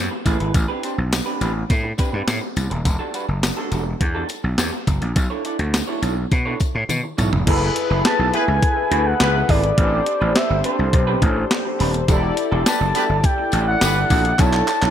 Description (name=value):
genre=early-eighties boogie funk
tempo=104 BPM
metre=4/4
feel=straight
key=unclear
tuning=A4 = 441 Hz
part: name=gritty slap bass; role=bass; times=0.0-14.9 s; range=D#1 to B2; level=-21 LUFS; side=equal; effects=overdrive
part: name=electric guitar through a small old amp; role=riff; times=0.1-14.9 s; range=G3 to D5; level=-27 LUFS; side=right 4 dB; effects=wide subtle chorus
part: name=clean 12-bit digital drum machine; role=drums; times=0.3-14.9 s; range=crash cymbal, handclaps, hi-hat, kick drum, snare drum, toms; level=-21 LUFS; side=equal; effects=none
part: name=tambourine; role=percussion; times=0.3-7.3, 12.1-14.8 s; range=none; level=-33 LUFS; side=left 10 dB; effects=none
part: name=mellow synth brass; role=accompaniment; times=7.5-14.9 s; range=D4 to D5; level=-24 LUFS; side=left 3 dB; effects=chorus
part: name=mellow horn section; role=second line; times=8.0-14.0 s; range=B3 to B4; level=-28 LUFS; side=left 2 dB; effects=none
part: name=expressive synth lead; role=melody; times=8.1-14.9 s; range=C5 to A5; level=-22 LUFS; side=equal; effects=chorus, digital delay
room=light reverb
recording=bright 1980s-style digital production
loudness=-17 LUFS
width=side -10 dB against mid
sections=0.0-7.5 A section; 7.5-14.9 B section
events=drum fill 6.9-7.5, 14.4-14.9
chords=0.0 F#m11 (rootless); 0.5 Am11; 2.9 Em11; 5.2 Bm11; 7.5 F#m11; 9.8 Am11; 12.1 Em11; 14.4 Bm11